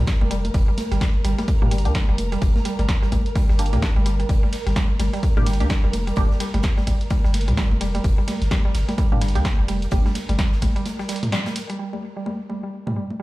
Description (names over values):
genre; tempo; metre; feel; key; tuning
minimal techno; 128 BPM; 4/4; swing 59% on 16ths; G minor; A4 = 440 Hz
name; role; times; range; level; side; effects
punchy sub bass; bass; 0.0-10.7 s; F1 to D2; -22 LUFS; equal; sidechain pumping
downlifter; sound effects; 0.0-0.5 s; none; -48 LUFS; equal; none
flickering grainy texture; texture; 0.0-11.8 s; Bb4; -35 LUFS; right 2 dB; built-in reverb, sidechain pumping
electronic kick drum; drums; 0.1-10.7 s; none; -20 LUFS; equal; none
oversized low-tuned drum kit; drums; 0.1-11.7 s; hi-hat, snare drum; -41 LUFS; right 2 dB; sidechain pumping on hats, high-pass filter on hats, high-pass filter on snare, high-pass filter on room
punchy analog drum machine; drums; 0.1-11.8 s; hi-hat, ride cymbal, snare drum; -30 LUFS; equal; low-pass filter on hats, low-pass filter on snare, low-pass filter on cymbals
mallet-like synth pluck; riff; 0.2-13.2 s; G3 to D4; -29 LUFS; right 1 dB; chorus, sidechain pumping, digital delay
electronic congas and toms; percussion; 0.2-13.2 s; none; -30 LUFS; equal; dub echo
filtered dub chord stab; stabs; 1.6-6.3, 9.1-10.0, 12.9-13.2 s; Bb3 to G4; -32 LUFS; right 2 dB; phaser, analog chorus, dub echo
room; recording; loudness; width
little or no reverb; played on a big sound system in a bare room, stone room reverb; -19 LUFS; side -18 dB against mid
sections
0.0-11.8 A section; 11.8-13.2 B section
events
drop 0.0-11.8; break 10.9-11.8; band accent 11.3; filter sweep on synth arpeggio sound 11.8-13.2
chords
0.0 Gm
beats
0.07 | 0.54 1.01 1.48 1.95 | 2.42 2.89 3.35 3.82 | 4.29 4.76 5.23 5.70 | 6.17 6.64 7.11 7.57 | 8.04 8.51 8.98 9.45 | 9.92 10.39 10.86 11.32 | 11.79 12.26 12.73 13.20